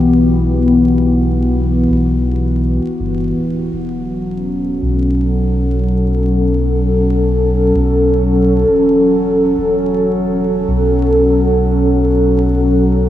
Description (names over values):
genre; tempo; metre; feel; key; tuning
ambient dub; 82 BPM; 4/4; swing 55% on 16ths; unclear; A4 = 442 Hz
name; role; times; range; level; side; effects
warbly tape-like pad; sustained chords; 0.0-13.1 s; E3 to A4; -13 LUFS; equal; chorus, built-in reverb
soft dub sub bass; bass; 0.0-13.1 s; D1 to B1; -17 LUFS; equal; none
room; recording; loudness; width
wet huge ambient reverb, RT60 6.6 s; dreamy mix soaked in reverb, vinyl crackle, small room ambience; -12 LUFS; side -12 dB against mid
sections
0.0-13.1 A section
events
none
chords
0.0 Em; 3.7 F#m7/E